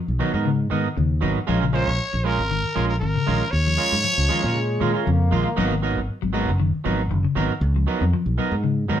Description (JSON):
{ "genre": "afrobeat", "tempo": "118 BPM", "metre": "4/4", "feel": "swing 54% on 16ths", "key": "G# dorian", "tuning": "A4 = 439 Hz", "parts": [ { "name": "clean electric guitar", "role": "arpeggios", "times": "0.0-9.0 s", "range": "C#3 to G#3", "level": "-26 LUFS", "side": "left 6 dB", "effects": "none" }, { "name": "fingered electric bass", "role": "bass", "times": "0.1-9.0 s", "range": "F#1 to A#2", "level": "-22 LUFS", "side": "equal", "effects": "none" }, { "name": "electric guitar at the edge of break-up", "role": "stabs", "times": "0.2-9.0 s", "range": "F#3 to A#4", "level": "-25 LUFS", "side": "right 6 dB", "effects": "none" }, { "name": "growling trumpet", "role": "melody", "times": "1.7-5.3 s", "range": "A#4 to C#5", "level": "-24 LUFS", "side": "equal", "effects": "none" }, { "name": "warm bass trombone", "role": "second line", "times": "4.0-6.1 s", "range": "E#3 to A#3", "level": "-29 LUFS", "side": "left 1 dB", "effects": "none" } ], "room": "moderate studio reverb, RT60 0.6 s", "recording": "band playing live in one room", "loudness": "-19 LUFS", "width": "side -10 dB against mid", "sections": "0.0-9.0 A section", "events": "none", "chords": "0.0 G#m9; 1.5 A#m7; 5.6 G#m9" }